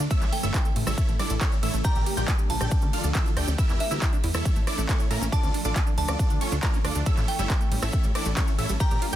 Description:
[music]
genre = uplifting trance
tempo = 138 BPM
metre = 4/4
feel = straight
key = unclear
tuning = A4 = 440 Hz
[part]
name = supersaw chords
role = melody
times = 0.0-9.2 s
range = Bb3 to G5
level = -33 LUFS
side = right 2 dB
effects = phaser, sidechain pumping, dub echo
[part]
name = wide unison pluck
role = second line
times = 0.0-9.2 s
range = Bb5 to G6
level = -37 LUFS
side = equal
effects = sidechain pumping, tape echo
[part]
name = analog string pad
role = sustained chords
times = 0.0-9.2 s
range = C#3 to D4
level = -35 LUFS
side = equal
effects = ensemble chorus, sidechain pumping
[part]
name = tight sequenced synth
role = arpeggios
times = 0.0-9.2 s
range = A2 to A4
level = -36 LUFS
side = right 4 dB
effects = chorus, sidechain pumping, tape echo
[part]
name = plucky analog bass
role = bass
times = 0.0-9.2 s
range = G1 to A2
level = -28 LUFS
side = equal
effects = sidechain pumping
[part]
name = big-room dance drum kit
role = drums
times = 0.0-9.2 s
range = handclaps, hi-hat, ride cymbal, rim click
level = -33 LUFS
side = right 1 dB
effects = none
[part]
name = cabasa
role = percussion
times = 0.0-9.2 s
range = none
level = -40 LUFS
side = right 1 dB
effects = none
[part]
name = electronic kick drum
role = drums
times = 0.1-8.9 s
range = none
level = -24 LUFS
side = equal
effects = none
[part]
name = glassy synth bell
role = second line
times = 0.3-9.2 s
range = E5 to Bb5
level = -35 LUFS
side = right 1 dB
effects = chorus, tape echo
[sound]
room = little or no reverb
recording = dense, heavily limited modern master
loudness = -22 LUFS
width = side -12 dB against mid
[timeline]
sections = 0.0-9.2 A section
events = none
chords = 0.1 A; 1.8 Gm/Bb; 2.7 Dm; 3.6 Edim; 4.5 A; 5.3 Dm; 7.1 A

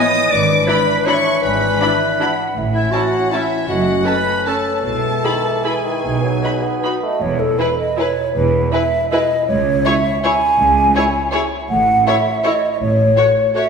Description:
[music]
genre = classical, orchestral ballroom waltz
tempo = 145-178 BPM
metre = 3/4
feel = rubato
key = E major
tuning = A4 = 440 Hz
[part]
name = warm symphonic violin section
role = melody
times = 0.0-13.6 s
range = B4 to B5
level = -24 LUFS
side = left 3 dB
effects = none
[part]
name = mellow hollow concert flute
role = second line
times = 0.0-13.7 s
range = A4 to G#5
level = -18 LUFS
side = equal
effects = none
[part]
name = rich symphonic violin section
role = second line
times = 0.0-13.6 s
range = G#4 to D#6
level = -24 LUFS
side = left 1 dB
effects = none
[part]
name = warm clarinet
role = second line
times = 0.0-6.8 s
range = E4 to D#5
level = -19 LUFS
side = left 2 dB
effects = none
[part]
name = warm symphonic viola section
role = accompaniment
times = 0.0-13.6 s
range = C#4 to A4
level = -25 LUFS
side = equal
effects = none
[part]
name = mellow French horn section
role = sustained chords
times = 0.0-7.0 s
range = E3 to E4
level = -25 LUFS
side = left 2 dB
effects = none
[part]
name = rich symphonic cello section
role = bass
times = 0.3-13.1 s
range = C#2 to B2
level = -24 LUFS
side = right 2 dB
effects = none
[part]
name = warm symphonic double bass section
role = bass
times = 0.3-13.1 s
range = E1 to C#2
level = -24 LUFS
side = right 4 dB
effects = none
[part]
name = clear bassoon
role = accompaniment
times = 5.2-7.2 s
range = D#3 to B3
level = -24 LUFS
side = right 2 dB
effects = none
[sound]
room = wet concert hall reverb, RT60 1.7 s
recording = recorded in a church or concert hall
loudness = -14 LUFS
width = side -6 dB against mid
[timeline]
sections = 0.0-7.2 A section; 7.2-13.7 B section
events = none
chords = 0.3 E7/G#; 2.6 A; 3.7 F#m; 4.8 E/B; 6.0 B; 7.2 E5; 9.5 C#m; 11.7 A5; 12.8 F#m/A

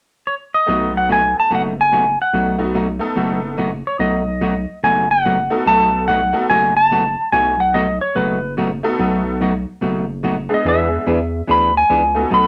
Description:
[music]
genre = country, western swing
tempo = 144 BPM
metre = 4/4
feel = swing 65% on 8ths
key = B mixolydian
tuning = A4 = 445 Hz
[part]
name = clean lap steel guitar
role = melody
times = 0.3-12.5 s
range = B4 to B5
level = -18 LUFS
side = equal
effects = none
[part]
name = hollow-body jazz guitar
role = accompaniment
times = 0.7-12.5 s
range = B2 to G#4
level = -22 LUFS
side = equal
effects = none
[part]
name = honky-tonk upright piano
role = accompaniment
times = 0.7-12.5 s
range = G#3 to A4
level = -25 LUFS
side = equal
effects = none
[part]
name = saturated sub bass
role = bass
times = 0.7-12.5 s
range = F#1 to E2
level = -27 LUFS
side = equal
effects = none
[sound]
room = moderate studio ambience, RT60 0.5 s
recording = none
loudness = -17 LUFS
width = mono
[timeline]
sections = 0.7-4.0 A section; 4.0-12.5 B section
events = none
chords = 0.0 N.C.; 0.7 B7; 10.6 E7

